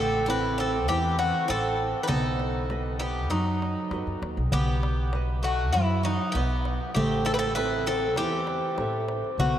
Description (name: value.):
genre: greek folk, Greek bouzouki band.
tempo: 99 BPM.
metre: 4/4.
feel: straight.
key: unclear.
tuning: A4 = 439 Hz.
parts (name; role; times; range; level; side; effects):
Greek bouzouki; melody; 0.0-9.6 s; D#4 to B4; -29 LUFS; left 2 dB; none.
Greek bouzouki; second line; 0.0-9.6 s; F#3 to E4; -32 LUFS; right 1 dB; none.
flamenco guitar; accompaniment; 0.0-9.6 s; E3 to F#5; -31 LUFS; right 3 dB; none.
upright bass; bass; 0.0-9.6 s; A1 to F#2; -29 LUFS; equal; none.
darbuka; percussion; 0.3-9.5 s; none; -34 LUFS; left 1 dB; none.
room: wet cathedral reverb, RT60 7.1 s.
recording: in a vast, echoing space.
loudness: -24 LUFS.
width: side -10 dB against mid.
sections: 0.0-9.6 A section.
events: none.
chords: 0.0 Am; 2.1 B; 7.0 Am.